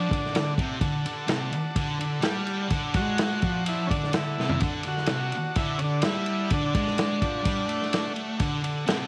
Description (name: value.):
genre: garage rock duo or trio.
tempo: 126 BPM.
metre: 4/4.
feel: straight.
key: D mixolydian.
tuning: A4 = 439 Hz.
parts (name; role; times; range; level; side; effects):
combo organ; melody; 0.0-8.1 s; C#4 to F#4; -33 LUFS; equal; none.
combo organ; sustained chords; 0.0-9.1 s; D5 to A5; -39 LUFS; equal; none.
thick fuzz guitar; riff; 0.0-9.1 s; C3 to A3; -31 LUFS; equal; distortion.
vintage drum kit; drums; 0.1-9.0 s; kick drum, ride cymbal, snare drum, toms; -30 LUFS; equal; none.
room: light reverb, studio ambience.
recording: none.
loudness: -27 LUFS.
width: mono.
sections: 0.0-9.1 A section.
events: drum fill 4.4.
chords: 0.0 D.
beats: 0.34 | 0.81 1.29 1.76 2.23 | 2.71 3.18 3.65 4.13 | 4.60 5.08 5.55 6.03 | 6.50 6.98 7.45 7.93 | 8.40 8.88.